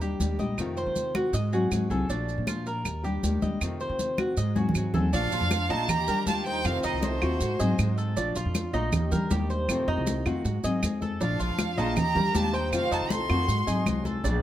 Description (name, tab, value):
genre	latin, Cuban son and guajira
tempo	158 BPM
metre	4/4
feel	straight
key	Bb major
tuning	A4 = 441 Hz
part	nylon-string guitar	accompaniment	0.0-14.4 s	C3 to Ab4	-31 LUFS	left 3 dB	none
part	Cuban tres	arpeggios	0.0-14.4 s	D4 to Eb5	-32 LUFS	right 1 dB	none
part	upright bass	bass	0.0-14.4 s	Bb1 to F3	-29 LUFS	right 1 dB	none
part	congas	percussion	0.0-14.4 s	none	-31 LUFS	left 1 dB	none
part	maracas	percussion	0.0-14.4 s	none	-40 LUFS	right 4 dB	none
part	claves	percussion	0.6-14.1 s	none	-33 LUFS	right 5 dB	none
part	clear violin	melody	5.1-8.0, 11.2-14.1 s	C5 to C6	-30 LUFS	right 2 dB	none
part	clear chamber violin section	second line	5.1-7.4, 11.2-13.5 s	A3 to A4	-38 LUFS	right 1 dB	none
room	light reverb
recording	none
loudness	-24 LUFS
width	side -12 dB against mid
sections	0.0-5.1 A section; 5.1-14.4 B section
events	drum fill 4.6-5.1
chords	0.0 Ebmaj7; 0.6 F7; 1.3 Ab7; 2.1 Bbmaj7; 2.9 Ebmaj7; 3.6 F7; 4.4 Ab7; 5.1 Bbmaj7; 5.9 Ebmaj7; 6.7 F7; 7.4 Ab7; 8.2 Bbmaj7; 8.9 Ebmaj7; 9.7 F7; 10.4 Ab7; 11.2 Bbmaj7; 12.0 Ebmaj7; 12.7 F7; 13.5 Ab7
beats	0.20 | 0.58 0.96 1.34 1.72 | 2.10 2.48 2.86 3.24 | 3.62 4.00 4.37 4.75 | 5.13 5.51 5.89 6.27 | 6.65 7.03 7.41 7.79 | 8.17 8.55 8.93 9.31 | 9.69 10.07 10.45 10.83 | 11.21 11.59 11.97 12.35 | 12.73 13.11 13.49 13.87 | 14.25